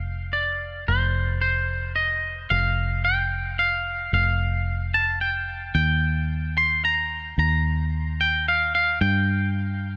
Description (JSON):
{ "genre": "post-rock", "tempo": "111 BPM", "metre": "3/4", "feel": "straight", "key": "unclear", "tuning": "A4 = 441 Hz", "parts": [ { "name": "twangy electric guitar", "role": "melody", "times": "0.0-10.0 s", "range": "C5 to C6", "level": "-25 LUFS", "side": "equal", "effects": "slapback echo" }, { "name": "fingered electric bass", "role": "bass", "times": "0.0-10.0 s", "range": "F1 to G2", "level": "-28 LUFS", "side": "equal", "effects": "none" } ], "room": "light reverb", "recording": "none", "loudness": "-23 LUFS", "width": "mono", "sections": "0.0-10.0 A section", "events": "none", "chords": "0.0 F5; 5.8 Eb; 9.0 N.C.", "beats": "0.33 | 0.87 1.41 1.95 | 2.50 3.04 3.58 | 4.12 4.67 5.21 | 5.75 6.29 6.83 | 7.38 7.92 8.46 | 9.00 9.54" }